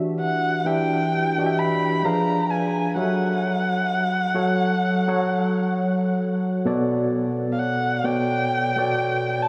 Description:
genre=R&B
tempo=65 BPM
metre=4/4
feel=swing 58% on 16ths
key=B minor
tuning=A4 = 439 Hz
part: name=tine electric piano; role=accompaniment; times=0.0-9.5 s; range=B2 to F#5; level=-24 LUFS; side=equal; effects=none
part: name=dark erhu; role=melody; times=0.2-9.5 s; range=E#5 to B5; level=-27 LUFS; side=equal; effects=none
room=wet huge ambient reverb, RT60 4.6 s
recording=dreamy mix soaked in reverb, small room ambience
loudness=-22 LUFS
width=mono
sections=0.0-9.5 A section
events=none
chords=0.0 Em7; 2.0 Fdim7; 3.0 F#m7; 6.7 Bm7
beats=0.19 1.11 2.04 | 2.96 3.88 4.80 5.73 | 6.65 7.57 8.50 9.42

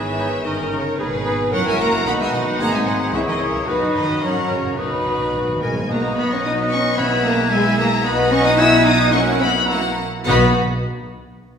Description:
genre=quick classical-period movement for symphony orchestra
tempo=101-114 BPM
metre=2/4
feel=straight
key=B major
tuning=A4 = 436 Hz
part: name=rich chamber violin section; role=melody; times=0.0-10.6 s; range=B4 to E6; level=-24 LUFS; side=left 3 dB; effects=none
part: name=mellow clarinet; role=second line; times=0.0-10.5 s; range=D#4 to E5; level=-28 LUFS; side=equal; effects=none
part: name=rich chamber violin section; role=second line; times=0.0-10.6 s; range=F#4 to F#5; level=-27 LUFS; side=left 2 dB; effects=none
part: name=warm oboe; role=second line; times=0.0-10.5 s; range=F#4 to G#5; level=-28 LUFS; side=equal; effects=none
part: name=clear symphonic viola section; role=accompaniment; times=0.0-10.6 s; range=A#3 to B4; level=-25 LUFS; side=right 1 dB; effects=none
part: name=dark French horn section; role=sustained chords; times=0.0-10.5 s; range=D#3 to E4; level=-23 LUFS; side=left 2 dB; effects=none
part: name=dark trumpet section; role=stabs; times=0.0-5.6 s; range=F#4 to B4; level=-27 LUFS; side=right 1 dB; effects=none
part: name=rich chamber cello section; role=bass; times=0.0-10.6 s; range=B2 to E4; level=-25 LUFS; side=right 2 dB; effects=none
part: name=warm symphonic double bass section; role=bass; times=0.0-10.6 s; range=F#1 to F#2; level=-26 LUFS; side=right 3 dB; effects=none
part: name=silver concert flute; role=second line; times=0.2-10.6 s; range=B5 to G#6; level=-28 LUFS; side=left 2 dB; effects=none
part: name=timpani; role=percussion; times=4.8-7.7, 10.3-10.5 s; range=B2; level=-29 LUFS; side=equal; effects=none
room=wet recital hall reverb, RT60 1.8 s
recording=recorded in a church or concert hall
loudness=-16 LUFS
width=side -7 dB against mid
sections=0.0-5.9 A section; 5.9-10.3 B section; 10.3-11.4 C section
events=timpani fill 4.8-5.9; slowing down 7.5-10.3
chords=0.5 D#7/G; 1.0 G#m; 1.5 F#7; 2.1 B; 2.6 G#7; 3.1 C#m; 3.7 B/F#; 4.2 F#; 4.8 B; 7.0 E/B; 8.1 B; 9.1 F#7/B; 10.3 B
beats=| 0.46 1.00 | 1.53 2.06 | 2.60 3.13 | 3.67 4.22 | 4.78 5.35 | 5.90 6.44 | 6.98 7.52 | 8.05 8.58 | 9.13 9.70 | 10.28

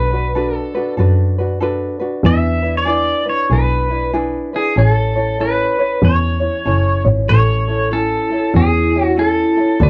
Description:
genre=Hawaiian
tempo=95 BPM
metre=4/4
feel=swing 62% on 8ths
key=A major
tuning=A4 = 440 Hz
part: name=pedal steel guitar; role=melody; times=0.0-9.9 s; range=G#4 to E5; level=-21 LUFS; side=equal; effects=none
part: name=tenor ukulele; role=accompaniment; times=0.0-9.9 s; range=C#4 to D5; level=-23 LUFS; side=equal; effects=none
part: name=dark double bass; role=bass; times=0.0-9.9 s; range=F#1 to F#2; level=-18 LUFS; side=equal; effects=none
part: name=vibraphone with medium mallets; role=second line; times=7.3-9.9 s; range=E4 to A4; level=-21 LUFS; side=equal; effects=none
room=little or no reverb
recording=dry, close 1970s-style studio recording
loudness=-16 LUFS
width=mono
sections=0.0-7.3 A section; 7.3-9.9 A section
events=none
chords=0.0 Bm7; 2.2 E7; 4.8 A; 7.3 Amaj7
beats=0.35 0.98 1.61 | 2.24 2.88 3.51 4.14 | 4.77 5.40 6.03 6.66 | 7.29 7.92 8.55 9.18 | 9.81

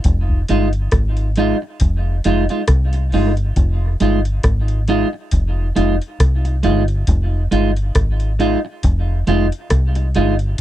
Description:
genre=dub reggae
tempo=68 BPM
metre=4/4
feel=swing 56% on 16ths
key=F minor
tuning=A4 = 440 Hz
part: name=soft vintage rhythm box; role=drums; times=0.0-10.6 s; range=hi-hat, kick drum, rim click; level=-17 LUFS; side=equal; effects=none
part: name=deep dub fingered electric bass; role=bass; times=0.1-10.5 s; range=F1 to C2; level=-17 LUFS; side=equal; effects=transformer saturation
part: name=clean electric guitar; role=accompaniment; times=0.5-10.3 s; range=Ab3 to F4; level=-20 LUFS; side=right 2 dB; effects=dub echo
room=little or no reverb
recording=dry, close 1970s-style studio recording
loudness=-15 LUFS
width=side -13 dB against mid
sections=0.0-10.6 A section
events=none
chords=0.0 Fm7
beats=| 0.05 0.93 1.80 2.68 | 3.56 4.44 5.32 6.20 | 7.08 7.95 8.83 9.71 | 10.59

